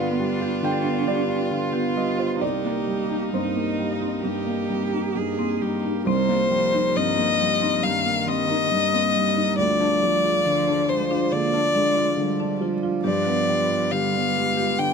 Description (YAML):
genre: neoclassical piano and strings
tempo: 68 BPM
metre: 4/4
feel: uneven beats, rubato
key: C minor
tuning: A4 = 440 Hz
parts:
  - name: rich violin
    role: melody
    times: 0.0-14.9 s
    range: Eb4 to G5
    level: -24 LUFS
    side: left 3 dB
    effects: none
  - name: rich cello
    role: second line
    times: 0.0-14.9 s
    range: Eb3 to Ab4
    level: -29 LUFS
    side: right 10 dB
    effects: tape echo
  - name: felt-muted upright piano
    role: accompaniment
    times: 0.0-14.9 s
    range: C2 to G5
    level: -25 LUFS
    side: equal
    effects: none
  - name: pedal harmonium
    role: sustained chords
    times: 0.0-14.9 s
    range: F3 to D5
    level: -34 LUFS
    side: right 5 dB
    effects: none
  - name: marimba with hard mallets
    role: arpeggios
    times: 0.0-14.9 s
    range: C4 to F5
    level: -32 LUFS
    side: left 6 dB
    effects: tape echo
room: little or no reverb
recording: close, detailed microphones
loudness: -20 LUFS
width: side -6 dB against mid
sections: 0.0-6.1 A section; 6.1-14.9 B section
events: none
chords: 0.0 G7; 2.4 Cm7; 9.6 Ddim; 13.0 G7